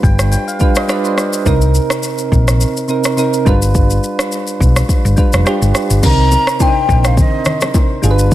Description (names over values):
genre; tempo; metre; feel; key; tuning
afrobeats; 105 BPM; 4/4; swing 55% on 16ths; C minor; A4 = 445 Hz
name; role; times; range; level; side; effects
soft electric-piano-like synth keys; accompaniment; 0.0-8.3 s; C3 to G5; -17 LUFS; right 2 dB; chorus, tremolo
hollow-body short-scale fingered electric bass; bass; 0.0-8.3 s; F1 to C2; -12 LUFS; equal; none
afro-pop drum kit; drums; 0.0-8.3 s; crash cymbal, kick drum, rim click, shaker; -15 LUFS; equal; none
breathy mellow jazz flute; melody; 6.0-7.7 s; Eb5 to Bb5; -16 LUFS; left 2 dB; digital delay
congas and bongos; percussion; 6.0-8.3 s; none; -22 LUFS; left 2 dB; none
room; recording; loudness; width
digital ambience; none; -11 LUFS; side -14 dB against mid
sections
0.0-6.0 A section; 6.0-8.3 B section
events
synth keys fill 0.0-1.5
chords
0.0 G7; 1.5 Cm7; 3.5 G7; 6.0 Cm7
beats
0.32 0.89 | 1.46 2.03 2.60 3.18 | 3.75 4.32 4.89 5.46 | 6.03 6.61 7.18 7.75 | 8.32